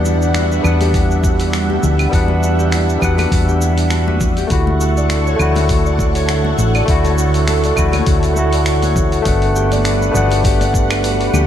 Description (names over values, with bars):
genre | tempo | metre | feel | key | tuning
sunset chillout | 101 BPM | 4/4 | swing 55% on 16ths | G lydian | A4 = 440 Hz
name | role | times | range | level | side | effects
barky tine electric piano | accompaniment | 0.0-11.5 s | G3 to F#5 | -19 LUFS | moving between left 3 dB and right 4 dB | overdrive, auto-pan, tape echo
lush unison pad | sustained chords | 0.0-11.5 s | D3 to C#6 | -22 LUFS | right 1 dB | chorus, phaser
Celtic harp | arpeggios | 0.0-11.5 s | E4 to G5 | -24 LUFS | left 5 dB | tape echo
hollow-body short-scale fingered electric bass | bass | 0.0-11.5 s | G1 to E2 | -16 LUFS | equal | tube saturation
dusty soul sampler-style drum kit | drums | 0.1-11.5 s | cabasa, claves, finger snaps, hi-hat | -24 LUFS | right 1 dB | none
congas and bongos | percussion | 0.3-11.5 s | none | -27 LUFS | left 3 dB | none
electronic kick drum | drums | 0.9-10.9 s | none | -18 LUFS | equal | none
room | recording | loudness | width
light reverb, digital ambience | lossy compression artefacts | -12 LUFS | side -10 dB against mid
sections
0.0-9.3 A section; 9.3-11.5 B section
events
none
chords
0.0 Em9; 4.5 Dmaj7; 9.3 Gmaj7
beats
0.35 0.94 1.54 | 2.13 2.72 3.32 3.91 | 4.51 5.10 5.69 6.29 | 6.88 7.48 8.07 8.66 | 9.26 9.85 10.45 11.04